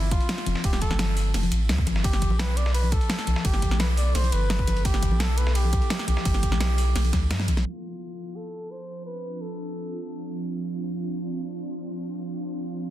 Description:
liquid drum and bass; 171 BPM; 4/4; straight; D dorian; A4 = 440 Hz
trumpet with bucket mute; melody; 0.0-10.3 s; E4 to D5; -33 LUFS; equal; digital delay
ethereal airy pad; sustained chords; 0.0-12.9 s; F3 to A4; -33 LUFS; right 1 dB; ensemble chorus, built-in reverb, sidechain pumping
warm sub bass; bass; 0.0-7.6 s; D1 to G2; -24 LUFS; equal
congas; percussion; 0.0-7.6 s; -34 LUFS; left 5 dB
dusty soul sampler-style drum kit; drums; 0.1-7.7 s; hi-hat, snare drum; -34 LUFS; equal; high-pass filter on snare, high-pass filter on hats, high-pass filter on room
electronic kick drum; drums; 0.1-7.2 s; -25 LUFS; equal; overdrive
pop drum kit; drums; 0.1-7.6 s; hi-hat, ride cymbal, snare drum; -31 LUFS; right 1 dB; overdrive
digital ambience; dense, heavily limited modern master, low-pass filter; -23 LUFS; side -13 dB against mid
0.0-7.7 A section; 7.7-12.9 B section
drop 0.0-7.7; drum fill 7.1-7.7; kick drops out 7.3-7.7; filter sweep on ambient pad 7.7-12.9; filter sweep 7.7-12.9
0.0 Dm7; 2.0 G13; 7.7 Dm7

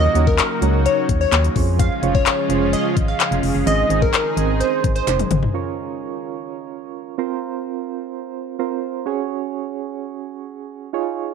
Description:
dance-pop; 128 BPM; 4/4; straight; Bb minor; A4 = 440 Hz
glassy wavetable pluck; melody; 0.0-5.0 s; Bb4 to F5; -22 LUFS; left 1 dB; chorus, slapback echo
soft electric-piano-like synth keys; accompaniment; 0.0-11.3 s; C4 to Eb5; -25 LUFS; right 13 dB; chorus, tremolo, sidechain pumping
lush unison pad; sustained chords; 0.0-5.5 s; Db3 to Ab4; -25 LUFS; equal; chorus, sidechain pumping
organ-like FM bass; bass; 0.0-5.5 s; F1 to F2; -20 LUFS; equal; sidechain pumping
pop drum kit; drums; 0.2-5.5 s; handclaps, hi-hat, kick drum, toms; -20 LUFS; left 4 dB
group handclap; percussion; 0.4-5.2 s; -28 LUFS; right 15 dB
light reverb, digital ambience; 1960s-style stereo; -17 LUFS; side -6 dB against mid
0.0-5.5 A section; 5.5-11.3 B section
drop 0.0-5.5; drum fill 5.1-5.5
0.0 Ebm7; 1.6 Dbmaj7/F; 3.7 Ab; 5.5 Bbm; 7.2 Fsus4; 9.1 Gbsus2

